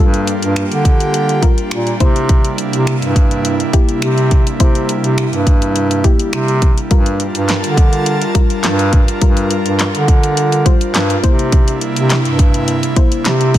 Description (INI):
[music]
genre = dance-pop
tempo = 104 BPM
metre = 4/4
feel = straight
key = unclear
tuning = A4 = 440 Hz
[part]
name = soft round pluck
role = accompaniment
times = 0.0-13.5 s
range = G3 to C5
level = -21 LUFS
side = left 6 dB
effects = chorus, sidechain pumping
[part]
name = airy breathy pad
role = sustained chords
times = 0.0-13.6 s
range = C3 to A5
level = -19 LUFS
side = right 2 dB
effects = chorus, sidechain pumping
[part]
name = clear bass clarinet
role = bass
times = 0.0-13.6 s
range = G2 to D3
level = -16 LUFS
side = equal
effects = sidechain pumping
[part]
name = house drum kit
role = drums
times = 0.1-13.6 s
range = finger snaps, handclaps, hi-hat, kick drum, snare drum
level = -13 LUFS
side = equal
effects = soft clipping on snare
[sound]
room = little or no reverb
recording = dense, heavily limited modern master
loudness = -11 LUFS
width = side -13 dB against mid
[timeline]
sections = 0.0-13.6 A section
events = none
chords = 0.0 Gm7; 2.0 C7; 6.9 Gm7; 11.2 C7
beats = 0.56 1.14 1.72 | 2.29 2.87 3.45 4.03 | 4.60 5.18 5.76 6.33 | 6.91 7.49 8.06 8.64 | 9.22 9.79 10.37 10.95 | 11.53 12.10 12.68 13.26